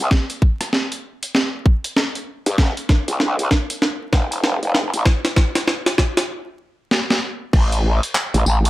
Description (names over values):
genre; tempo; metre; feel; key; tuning
glitch hop; 97 BPM; 4/4; swing 61% on 16ths; unclear; A4 = 440 Hz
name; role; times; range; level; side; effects
growl bass; bass; 0.0-8.7 s; F1 to G2; -18 LUFS; equal; chorus, tube saturation, high-pass filter
boom bap sampler-style drum kit; drums; 0.1-8.7 s; crash cymbal, handclaps, hi-hat, rim click, snare drum, tambourine; -20 LUFS; equal; none
electronic kick drum; drums; 0.1-7.7 s; none; -15 LUFS; equal; none
room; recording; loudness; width
light reverb; vinyl crackle; -17 LUFS; side -17 dB against mid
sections
0.0-7.5 A section; 7.5-8.7 B section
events
build-up 0.0-7.5; drum fill 0.0-6.3, 6.9-7.5; stop 6.3-7.5; drop 7.5-8.7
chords
none